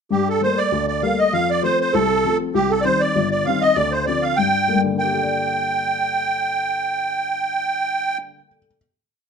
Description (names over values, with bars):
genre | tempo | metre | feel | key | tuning
celtic folk, Celtic reel | 197 BPM | 4/4 | swing 54% on 8ths | G minor | A4 = 440 Hz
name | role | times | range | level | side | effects
musette accordion | melody | 0.1-8.2 s | G4 to G5 | -19 LUFS | right 2 dB | none
dark upright piano | accompaniment | 0.1-8.8 s | G1 to D5 | -22 LUFS | left 6 dB | none
room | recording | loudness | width
moderate studio reverb, RT60 0.7 s | dark, warm production | -18 LUFS | side -6 dB against mid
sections
0.1-5.0 A section; 5.0-7.4 final chord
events
none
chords
0.1 Gmadd9; 1.3 F; 2.5 Cm; 3.8 Dm7; 4.4 Gmadd9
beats
| 0.12 0.42 0.72 1.03 | 1.33 1.63 1.94 2.24 | 2.55 2.85 3.16 3.46 | 3.77 4.07 4.38 4.68 | 4.99 5.29 5.60 5.90 | 6.21 6.51 6.81 7.12